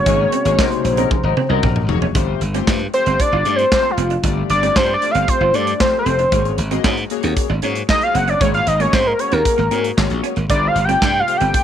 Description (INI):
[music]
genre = early-eighties boogie funk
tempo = 115 BPM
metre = 4/4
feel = straight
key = unclear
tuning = A4 = 441 Hz
[part]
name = fat analog lead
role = melody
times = 0.0-11.6 s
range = F4 to G5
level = -17 LUFS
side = equal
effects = chorus, slapback echo
[part]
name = warm analog pad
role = sustained chords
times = 0.0-2.1, 10.5-11.6 s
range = C3 to Gb4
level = -31 LUFS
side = equal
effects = chorus
[part]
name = chorused polysynth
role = accompaniment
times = 0.1-11.6 s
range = A3 to Eb5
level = -25 LUFS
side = left 14 dB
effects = none
[part]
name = semi-hollow electric guitar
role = riff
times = 0.1-11.6 s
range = Ab3 to F4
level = -26 LUFS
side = right 14 dB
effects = lush chorus
[part]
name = glassy slap bass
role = bass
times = 0.1-11.5 s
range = F1 to Ab2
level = -20 LUFS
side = equal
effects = none
[part]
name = modern studio drum kit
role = drums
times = 0.1-11.6 s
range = handclaps, hi-hat, kick drum, snare drum, toms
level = -20 LUFS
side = right 1 dB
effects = none
[part]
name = warm horn section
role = second line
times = 0.6-1.9 s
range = Gb3 to Bb4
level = -24 LUFS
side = left 14 dB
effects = slapback echo
[sound]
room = light reverb, small room reverb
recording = 1960s-style stereo with parts hard left and right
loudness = -14 LUFS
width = side -9 dB against mid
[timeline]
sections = 0.0-2.2 A section; 2.2-11.6 B section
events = drum fill 1.1-2.2; analog synth lead solo 2.2-11.6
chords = 0.0 Ab9sus4; 2.2 G9sus4; 6.3 Ab9sus4; 10.5 G9sus4